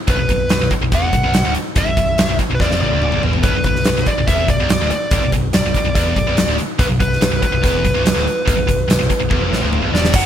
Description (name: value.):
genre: hard rock.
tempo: 143 BPM.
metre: 4/4.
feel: straight.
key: B minor.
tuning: A4 = 441 Hz.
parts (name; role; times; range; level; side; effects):
bluesy overdriven lead guitar; melody; 0.1-10.3 s; B4 to F#5; -20 LUFS; right 1 dB; distortion, slapback echo.
heavy high-gain guitar; riff; 0.1-10.3 s; B1 to F#3; -20 LUFS; equal; distortion.
picked electric bass; bass; 0.1-10.3 s; B0 to A1; -21 LUFS; equal; none.
huge arena drum kit; drums; 0.1-10.2 s; crash cymbal, hi-hat, kick drum, snare drum, toms; -18 LUFS; equal; none.
room: light reverb.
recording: none.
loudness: -14 LUFS.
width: side -10 dB against mid.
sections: 0.0-10.1 A section.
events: drum fill 2.6-3.4, 9.3-10.1.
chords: 0.0 Bm.